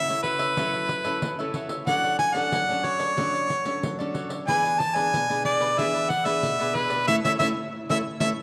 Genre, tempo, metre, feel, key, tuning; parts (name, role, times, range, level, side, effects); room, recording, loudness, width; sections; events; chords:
samba and choro; 92 BPM; 4/4; straight; A4 = 440 Hz
warm harmonica; melody; 0.0-8.3 s; B4 to A5; -26 LUFS; equal
cavaquinho; accompaniment; 0.0-8.3 s; E4 to E5; -35 LUFS; equal
nylon-string guitar; accompaniment; 0.0-8.3 s; B2 to A4; -34 LUFS; equal
pandeiro; percussion; 0.1-8.4 s; -35 LUFS; equal
wet echo chamber reverb, RT60 2.5 s; -25 LUFS; mono
0.0-8.4 A section
band accent 7.1-8.4
0.0 F#m7; 1.9 Dmaj7/F#; 4.5 E7; 7.1 A